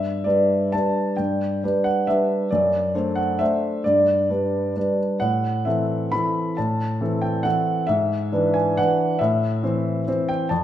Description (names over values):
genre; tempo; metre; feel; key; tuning
classical, piano waltz; 135 BPM; 3/4; uneven beats, rubato; G major; A4 = 440 Hz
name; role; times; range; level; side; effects
clear grand piano; solo; 0.0-10.6 s; F2 to B5; -19 LUFS; equal; none
room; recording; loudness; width
wet stone room reverb, RT60 1.2 s; heard from further back in the room; -19 LUFS; side -11 dB against mid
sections
0.0-10.6 A section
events
none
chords
0.0 G; 2.5 D7/F#; 3.9 G; 5.2 Am; 7.9 E7/G#; 9.2 Am